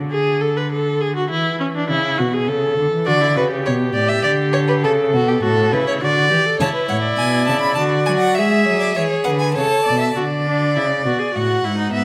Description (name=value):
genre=classical, baroque-style fugue for string quartet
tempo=102 BPM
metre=3/4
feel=straight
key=D major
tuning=A4 = 439 Hz
part: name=rich cello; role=bass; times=0.0-12.0 s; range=G#2 to G#3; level=-23 LUFS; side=equal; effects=none
part: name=rich viola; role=accompaniment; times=0.1-12.0 s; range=B3 to B4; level=-23 LUFS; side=equal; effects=none
part: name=rich violin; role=second line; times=3.1-12.0 s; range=F#4 to F#5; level=-22 LUFS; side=equal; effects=none
part: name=clear violin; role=melody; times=6.6-10.1 s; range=C#5 to B5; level=-24 LUFS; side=equal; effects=none
room=moderate recital hall reverb, RT60 1.5 s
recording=none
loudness=-18 LUFS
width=mono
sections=0.0-10.2 A section; 10.2-12.0 B section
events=none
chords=0.0 N.C.; 0.7 D; 1.3 E; 2.5 A/C#; 3.1 D; 4.2 G5/D; 4.8 A; 6.0 D; 6.6 A; 7.8 D; 8.4 E7; 9.6 A/C#; 10.2 D; 11.3 D#dim/A